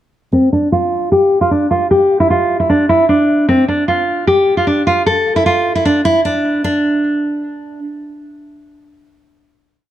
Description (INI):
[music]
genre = hip hop, trap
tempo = 152 BPM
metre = 4/4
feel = half-time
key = D minor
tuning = A4 = 441 Hz
[part]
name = nylon-string guitar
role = solo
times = 0.3-7.8 s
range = C4 to A4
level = -12 LUFS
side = equal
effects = low-pass filter
[sound]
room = moderate scoring stage reverb, RT60 1.7 s, small room ambience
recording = dark, warm production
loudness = -11 LUFS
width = side -12 dB against mid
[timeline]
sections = 0.3-6.6 breakdown; 6.6-9.8 final note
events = filter sweep on nylon-string guitar 0.3-6.6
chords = none